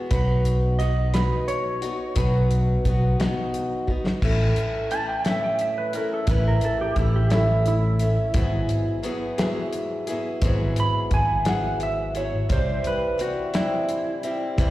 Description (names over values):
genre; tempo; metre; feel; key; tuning
folk rock and heartland rock; 58 BPM (dotted quarters); 6/8; straight; unclear; A4 = 441 Hz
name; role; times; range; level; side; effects
picked old ladder-braced acoustic guitar; accompaniment; 0.0-14.7 s; G#2 to G#4; -26 LUFS; left 1 dB; slapback echo
clean lap steel guitar; melody; 0.1-14.7 s; E4 to B5; -28 LUFS; right 2 dB; slapback echo
fingered electric bass; bass; 0.1-14.7 s; G#1 to C2; -22 LUFS; equal; none
damped 70s drum kit; drums; 0.1-14.7 s; crash cymbal, hi-hat, kick drum, snare drum; -25 LUFS; equal; none
room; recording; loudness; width
light reverb, small room reverb; live gig heard through the venue's PA, recital hall reverb; -21 LUFS; side -16 dB against mid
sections
0.0-4.2 A section; 4.2-14.7 B section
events
drum fill 3.9-4.2; electric slide guitar solo 4.2-14.7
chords
0.1 B; 4.2 A; 8.3 Eadd9/G#; 12.5 C